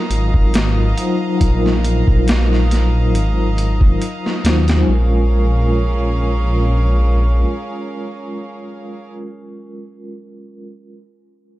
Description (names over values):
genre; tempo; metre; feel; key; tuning
trip hop; 69 BPM; 4/4; swing 53% on 16ths; Bb minor; A4 = 440 Hz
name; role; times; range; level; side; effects
vibraphone with soft mallets; accompaniment; 0.0-10.9 s; Gb3 to C5; -22 LUFS; left 1 dB; tremolo, low-pass filter, tape echo
clear studio violin section; sustained chords; 0.0-9.1 s; Db4 to Bb5; -27 LUFS; right 1 dB; none
dark detuned saw bass; bass; 0.1-7.5 s; Ab1 to Eb2; -15 LUFS; equal; none
boom bap sampler-style drum kit; drums; 0.1-4.9 s; hi-hat, kick drum, snare drum; -18 LUFS; equal; none
room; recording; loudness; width
light reverb, digital ambience; dark, warm production; -13 LUFS; side -16 dB against mid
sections
0.0-4.9 A section; 4.9-8.4 B section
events
none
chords
0.0 Ebmadd9; 4.9 Bbm7